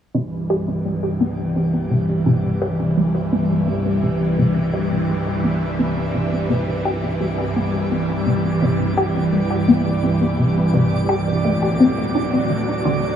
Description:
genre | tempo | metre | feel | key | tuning
ambient, sequencer-driven space music | 85 BPM | 4/4 | straight | C lydian | A4 = 441 Hz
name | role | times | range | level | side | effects
phased string machine | sustained chords | 0.1-13.2 s | C2 to F#3 | -20 LUFS | equal | ensemble chorus, phaser
resonant blip pluck | riff | 0.1-13.1 s | C3 to G4 | -21 LUFS | left 1 dB | phaser, analog chorus, analog delay
twinkling granular texture | texture | 0.5-13.2 s | D5 | -31 LUFS | right 3 dB | built-in reverb
room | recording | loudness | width
wet shimmer reverb, RT60 8.8 s | small room ambience | -17 LUFS | side -9 dB against mid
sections
0.1-13.2 A section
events
fade-in on synth texture 0.1-13.2; filter sweep on synth arpeggio sound 0.1-13.2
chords
0.1 C; 11.4 D

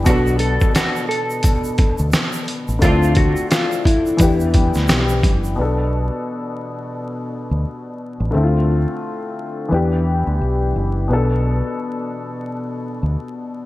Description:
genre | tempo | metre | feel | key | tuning
hip hop, boom-bap hip-hop | 87 BPM | 4/4 | swing 59% on 16ths | B minor | A4 = 440 Hz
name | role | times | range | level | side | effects
dark upright piano | accompaniment | 0.0-13.7 s | B2 to A4 | -22 LUFS | left 2 dB | cassette tape, high-pass filter, low-pass filter
deep dub fingered electric bass | bass | 0.0-13.2 s | F#1 to E2 | -18 LUFS | equal | none
mellow electric guitar | melody | 0.1-5.1 s | E4 to A4 | -22 LUFS | left 1 dB | analog chorus, high-pass filter, low-pass filter, digital delay
rich studio string section | stabs | 0.1-3.1 s | B3 to F#4 | -26 LUFS | right 1 dB | high-pass filter, low-pass filter, digital delay
trip hop sampler-style drum kit | drums | 0.1-5.4 s | hi-hat, kick drum, snare drum | -17 LUFS | equal | none
tube shaker | percussion | 0.1-5.6 s | none | -37 LUFS | right 5 dB | none
room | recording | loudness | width
light reverb | bright 1980s-style digital production, vinyl crackle | -16 LUFS | side -16 dB against mid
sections
0.0-5.6 A section; 5.6-13.7 B section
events
none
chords
0.1 Bm7; 2.8 D5; 4.2 Em7; 5.6 Bm7; 8.3 Dm7; 9.7 Em7; 11.1 Bm7

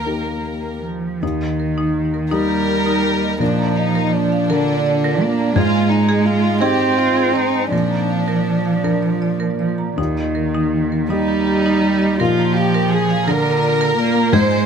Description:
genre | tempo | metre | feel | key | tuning
neoclassical piano and strings | 55 BPM (dotted quarters) | 6/8 | uneven beats, rubato | Eb major | A4 = 439 Hz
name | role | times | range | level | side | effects
warm chamber violin section | melody | 0.0-14.7 s | D4 to C5 | -20 LUFS | left 1 dB | none
dark cello | second line | 0.0-14.7 s | D3 to C4 | -19 LUFS | right 4 dB | none
felt-muted upright piano | accompaniment | 0.0-14.7 s | Eb2 to Eb5 | -23 LUFS | left 4 dB | none
glassy FM pad | sustained chords | 2.1-14.7 s | Bb3 to Eb5 | -28 LUFS | left 1 dB | none
marimba with hard mallets | arpeggios | 1.2-14.6 s | Eb4 to Bb5 | -26 LUFS | right 2 dB | tape echo
room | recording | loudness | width
light reverb | none | -15 LUFS | side -7 dB against mid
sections
0.0-1.2 A section; 1.2-14.7 B section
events
none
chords
0.0 Eb; 3.4 Bb; 5.6 Ab; 7.7 Bb; 10.0 Eb; 12.2 Bb

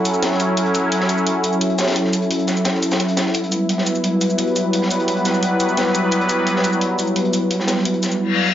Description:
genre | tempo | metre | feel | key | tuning
dark technical drum and bass | 173 BPM | 4/4 | straight | unclear | A4 = 440 Hz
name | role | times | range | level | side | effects
sweeping resonant pad | sustained chords | 0.0-8.5 s | F#3 to B4 | -17 LUFS | equal | chorus
crunchy breakbeat drum kit | drums | 0.1-8.1 s | hi-hat, snare drum | -26 LUFS | left 1 dB | high-pass filter on hats, studio ambience, high-pass filter on snare, high-pass filter on room
electronic hi-hat and cabasa | drums | 0.1-8.2 s | none | -26 LUFS | equal | studio ambience
reverse cymbal | sound effects | 8.3-8.5 s | none | -17 LUFS | left 6 dB | none
room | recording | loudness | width
moderate plate reverb, RT60 1.1 s, studio reverb | nothing above 7.5 kHz | -16 LUFS | side -11 dB against mid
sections
0.0-8.5 A section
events
reverse cymbal 8.3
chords
0.0 F#m7; 3.3 Em/F#

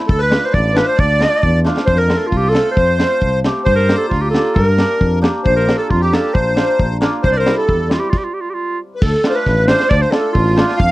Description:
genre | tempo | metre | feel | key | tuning
klezmer | 134 BPM | 2/4 | straight | F major | A4 = 439 Hz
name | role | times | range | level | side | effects
warm clarinet | melody | 0.1-10.9 s | F4 to F5 | -17 LUFS | right 2 dB | none
accordion | second line | 0.1-10.9 s | F4 to F5 | -20 LUFS | left 3 dB | light tremolo tuning
dark tuba | bass | 0.1-10.9 s | A1 to G2 | -18 LUFS | equal | none
deep reggae drum kit | drums | 0.1-10.9 s | crash cymbal, kick drum, snare drum | -17 LUFS | equal | none
hammered dulcimer | accompaniment | 0.3-10.7 s | G3 to G4 | -23 LUFS | equal | none
room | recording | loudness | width
light reverb | dry, close 1970s-style studio recording | -12 LUFS | side -17 dB against mid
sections
0.0-1.9 A section; 1.9-9.0 B section; 9.0-10.9 C section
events
drum fill 1.6; stop 8.1-9.0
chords
0.1 Dm; 1.9 F; 3.7 Gm; 5.5 Bb; 7.2 C; 8.1 N.C.; 9.0 Dm

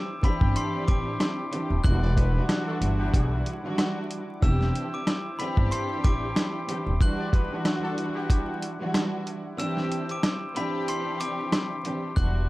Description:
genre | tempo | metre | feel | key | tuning
hip hop, boom-bap hip-hop | 93 BPM | 4/4 | swing 56% on 16ths | unclear | A4 = 444 Hz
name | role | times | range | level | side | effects
glockenspiel with hard plastic mallets | melody | 0.0-12.5 s | B5 to F#7 | -34 LUFS | left 2 dB | none
warm analog pad | sustained chords | 0.0-12.1 s | G3 to D6 | -40 LUFS | equal | chorus
dark studio string section | accompaniment | 0.2-12.5 s | E3 to G4 | -30 LUFS | right 1 dB | cassette tape
dusty soul sampler-style drum kit | drums | 0.2-12.3 s | hi-hat, kick drum, rim click, snare drum | -25 LUFS | equal | none
upright bass | bass | 0.4-7.0, 12.2-12.5 s | D#1 to B1 | -26 LUFS | equal | none
warm trumpet section | stabs | 2.0-8.6 s | B3 to D5 | -38 LUFS | left 2 dB | tape echo
room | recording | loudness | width
light reverb, small room ambience | dark, warm production, vinyl crackle | -24 LUFS | side -19 dB against mid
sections
0.0-12.2 A section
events
break 7.0-12.2; kick muted 9.6-12.2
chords
0.0 D9sus4; 1.8 Em9; 4.4 D9sus4/E; 7.0 Em9; 9.6 D9sus4/E

